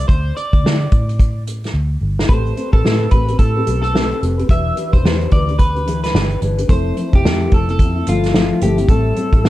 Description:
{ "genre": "indie pop, bedroom pop", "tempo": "109 BPM", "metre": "4/4", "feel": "swing 60% on 16ths", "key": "A minor", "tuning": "A4 = 440 Hz", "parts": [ { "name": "electric guitar at the edge of break-up", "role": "melody", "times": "0.0-9.5 s", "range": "F4 to E5", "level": "-22 LUFS", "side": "equal", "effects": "lush chorus" }, { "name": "vintage muted fingered electric bass", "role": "bass", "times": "0.0-9.5 s", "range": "E1 to D3", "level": "-19 LUFS", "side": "equal", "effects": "none" }, { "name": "unplugged drum kit", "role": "drums", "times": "0.1-9.5 s", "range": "hi-hat, kick drum, snare drum", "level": "-15 LUFS", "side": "equal", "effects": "none" }, { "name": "nylon-string guitar", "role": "accompaniment", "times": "2.3-9.5 s", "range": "A2 to B4", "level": "-21 LUFS", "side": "left 2 dB", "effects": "lush chorus, vibrato effect" } ], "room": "light reverb", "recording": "dark, warm production", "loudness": "-13 LUFS", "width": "side -15 dB against mid", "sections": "0.0-9.5 A section", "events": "drum fill 1.7-2.3", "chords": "0.1 D5; 2.3 Am9; 4.5 Em7; 6.7 Fmaj7; 8.9 Am7" }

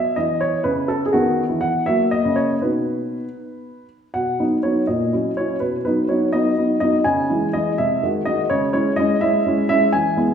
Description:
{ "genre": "classical-period piano sonatina", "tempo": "83 BPM (dotted quarters)", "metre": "6/8", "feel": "straight", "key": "B major", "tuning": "A4 = 440 Hz", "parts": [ { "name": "warm baby grand piano", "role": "solo", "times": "0.0-10.3 s", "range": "A#2 to G#5", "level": "-17 LUFS", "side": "equal", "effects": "none" } ], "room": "wet recital hall reverb, RT60 1.5 s", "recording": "recorded in a church or concert hall, small room ambience", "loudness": "-17 LUFS", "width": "side -8 dB against mid", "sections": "0.0-4.1 A section; 4.1-10.3 B section", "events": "none", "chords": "0.0 B5; 1.1 B/D#; 1.9 F#; 2.6 B; 4.9 F#7/A#; 5.6 B; 7.1 C#m; 7.8 G#7/B#; 8.5 C#m" }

